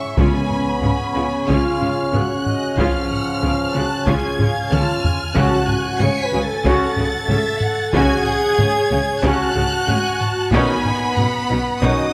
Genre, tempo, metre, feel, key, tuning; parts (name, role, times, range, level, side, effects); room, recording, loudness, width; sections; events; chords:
cinematic, epic orchestral film score; 93 BPM; 4/4; straight; A4 = 440 Hz
warm symphonic violin section; melody; 0.0-12.1 s; B5 to C#7; -28 LUFS; equal
rich studio violin section; second line; 0.0-12.1 s; C#5 to A5; -31 LUFS; equal
warm French horn section; sustained chords; 0.0-12.1 s; E#3 to C#5; -26 LUFS; equal
warm trombone section; sustained chords; 0.0-12.0 s; C#3 to C#4; -30 LUFS; equal
dark trumpet section; stabs; 0.0-12.1 s; C#4 to F#4; -29 LUFS; equal
rich symphonic viola section; accompaniment; 0.2-12.1 s; A3 to F#4; -28 LUFS; equal
clear symphonic cello section; bass; 0.2-11.9 s; B2 to C#3; -28 LUFS; equal
rich symphonic double bass section; bass; 0.2-11.9 s; B1 to C#2; -29 LUFS; equal
taiko ensemble; drums; 0.2-12.1 s; -25 LUFS; equal
timpani; percussion; 0.2-1.1, 5.3-6.3 s; C#3; -28 LUFS; equal
wet concert hall reverb, RT60 2.0 s; -19 LUFS; mono
0.0-12.1 A section
drum fill 4.4-5.4
0.2 C#7; 5.4 F#m/C#; 10.5 Badd9